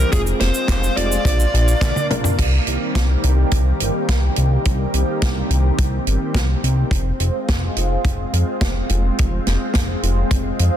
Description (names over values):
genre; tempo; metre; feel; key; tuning
synthwave; 106 BPM; 4/4; straight; C minor; A4 = 441 Hz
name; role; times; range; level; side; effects
fuzz lead guitar; melody; 0.0-2.1 s; Ab4 to D5; -26 LUFS; right 1 dB; distortion, digital delay, shimmer reverb
lush unison pad; sustained chords; 0.0-10.8 s; Eb3 to G4; -24 LUFS; equal; chorus, phaser, sidechain pumping, shimmer reverb
mellow FM electric piano; stabs; 0.0-2.4 s; C3 to Bb4; -31 LUFS; left 3 dB; chorus, tremolo, digital delay, shimmer reverb
chorused synth bass; bass; 0.0-10.7 s; F1 to F2; -18 LUFS; equal; sidechain pumping
kick drum; drums; 0.1-10.4 s; none; -21 LUFS; equal; none
natural country drum kit; drums; 0.1-10.7 s; cabasa, crash cymbal, handclaps, hi-hat, snare drum, toms; -25 LUFS; right 2 dB; soft clipping on snare
room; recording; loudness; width
light reverb, studio reverb; dense, heavily limited modern master; -16 LUFS; side -10 dB against mid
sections
0.0-2.4 A section; 2.4-10.8 B section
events
drum fill 1.8-2.4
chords
0.1 Fm; 1.3 Bb; 2.4 Cm7; 6.9 Fm